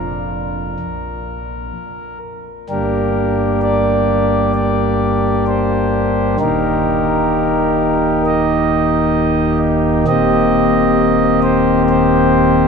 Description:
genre	classical, chorale-style piece for pipe organ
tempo	65 BPM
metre	4/4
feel	straight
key	G minor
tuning	A4 = 440 Hz
part	pipe organ, principal	solo	0.0-12.7 s	Eb1 to Eb5	-13 LUFS	equal	none
room	wet cathedral reverb, RT60 6.3 s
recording	in a vast, echoing space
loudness	-13 LUFS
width	side -5 dB against mid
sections	0.0-2.7 A section; 2.7-12.7 B section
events	none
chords	0.0 Bb5; 2.7 Gm; 6.4 Eb; 10.1 Cm7/Eb

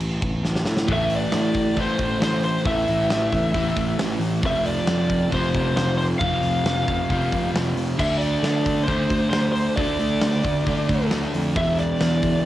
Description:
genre	hard rock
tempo	135 BPM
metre	4/4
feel	straight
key	A minor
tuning	A4 = 440 Hz
part	fuzz picked electric bass	bass	0.0-12.4 s	E1 to D3	-25 LUFS	equal	overdrive
part	huge arena drum kit	drums	0.0-12.3 s	crash cymbal, hi-hat, kick drum, snare drum	-27 LUFS	equal	cassette tape
part	lead guitar through a small cranked amp	melody	0.9-12.5 s	C5 to F5	-25 LUFS	equal	overdrive, cassette tape
part	overdriven semi-hollow guitar	riff	0.9-12.5 s	E2 to D4	-26 LUFS	left 4 dB	cassette tape
part	sludgy distorted guitar	riff	0.9-12.5 s	E2 to D4	-27 LUFS	right 6 dB	overdrive, cassette tape
room	little or no reverb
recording	home recording on cassette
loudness	-19 LUFS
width	side -14 dB against mid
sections	0.9-12.5 A section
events	drum fill 0.4-0.9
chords	0.0 N.C.; 0.9 Am; 4.4 F5; 8.0 D5; 11.6 E5

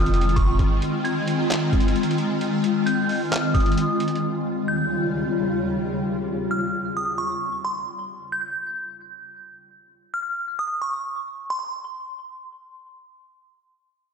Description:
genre	hip hop, atmospheric cloud-rap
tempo	132 BPM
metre	4/4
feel	half-time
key	unclear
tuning	A4 = 436 Hz
part	delicate synth tine bell	melody	0.0-12.8 s	C6 to Ab6	-28 LUFS	right 1 dB	chorus, low-pass filter, analog delay
part	granular cloud pad	sustained chords	0.0-6.0 s	Eb2 to F4	-23 LUFS	left 1 dB	built-in reverb, ensemble chorus
part	soft 808-style bass	bass	0.0-0.6 s	F1	-22 LUFS	equal	none
part	trip hop sampler-style drum kit	drums	0.1-4.2 s	handclaps, hi-hat, kick drum	-23 LUFS	equal	none
room	wet lush hall reverb, RT60 1.6 s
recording	dreamy mix soaked in reverb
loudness	-21 LUFS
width	side -6 dB against mid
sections	0.0-11.5 A section; 11.5-14.1 B section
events	none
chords	0.0 Fm7; 4.2 Eb13; 7.9 N.C.

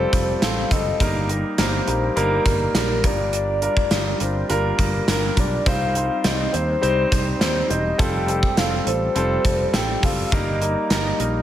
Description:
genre	1980s-style pop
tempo	103 BPM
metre	4/4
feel	straight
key	C dorian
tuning	A4 = 440 Hz
part	soft octave-layered synth lead	melody	0.0-11.4 s	Bb4 to G5	-25 LUFS	left 1 dB	chorus, phaser, tape echo
part	warm concert grand piano	accompaniment	0.0-11.4 s	G3 to C5	-24 LUFS	equal	none
part	fretless electric bass	bass	0.0-11.4 s	E1 to Eb2	-25 LUFS	equal	none
part	gated 80s drum kit	drums	0.1-11.3 s	hi-hat, kick drum, snare drum	-22 LUFS	equal	gated reverb
room	light reverb, studio reverb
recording	none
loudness	-18 LUFS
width	side -11 dB against mid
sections	0.0-11.4 A section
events	none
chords	0.0 Fadd9; 1.0 Eb/G; 3.0 Gm7; 5.7 Cm; 8.0 Fadd9; 10.3 Eb/G

